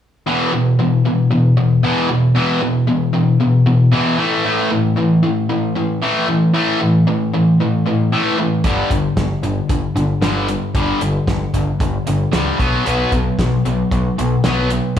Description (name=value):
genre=classic rock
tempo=114 BPM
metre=4/4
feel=straight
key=E minor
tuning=A4 = 440 Hz
part: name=distorted electric guitar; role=riff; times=0.3-15.0 s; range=E2 to B3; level=-14 LUFS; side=left 1 dB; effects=overdrive
part: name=growling picked electric bass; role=bass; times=8.6-15.0 s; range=G1 to C#2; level=-21 LUFS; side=equal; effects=overdrive
part: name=damped 70s drum kit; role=drums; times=8.6-15.0 s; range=hi-hat, kick drum, snare drum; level=-20 LUFS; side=equal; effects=none
room=moderate large studio reverb, RT60 0.9 s, small room ambience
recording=studio reverb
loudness=-14 LUFS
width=side -9 dB against mid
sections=0.3-15.0 A section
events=none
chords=0.3 E5; 4.2 A5; 8.7 G5; 12.6 B5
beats=| 0.26 0.79 1.31 1.83 | 2.36 2.88 3.40 3.93 | 4.45 4.98 5.50 6.03 | 6.55 7.08 7.60 8.13 | 8.65 9.18 9.70 10.23 | 10.76 11.28 11.81 12.34 | 12.86 13.39 13.92 14.45 | 14.97